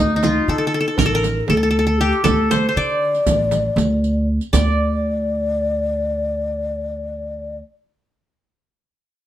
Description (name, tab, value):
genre	Turkish makam ensemble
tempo	238 BPM (eighths)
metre	9/8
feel	straight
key	D makam kurdi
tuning	A4 = 440 Hz
part	qanun	melody	0.0-7.6 s	Eb4 to D5	-20 LUFS	left 1 dB	plate reverb
part	breathy mellow low ney	second line	0.0-7.6 s	Eb4 to D5	-23 LUFS	left 2 dB	none
part	upright bass	bass	0.0-7.6 s	A1 to D3	-21 LUFS	equal	none
part	frame drum	percussion	0.2-4.8 s	none	-23 LUFS	right 3 dB	none
part	riq	percussion	0.2-4.8 s	none	-27 LUFS	right 6 dB	none
room	light reverb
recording	none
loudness	-16 LUFS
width	side -12 dB against mid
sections	0.0-4.5 A section; 4.5-6.8 B section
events	none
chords	none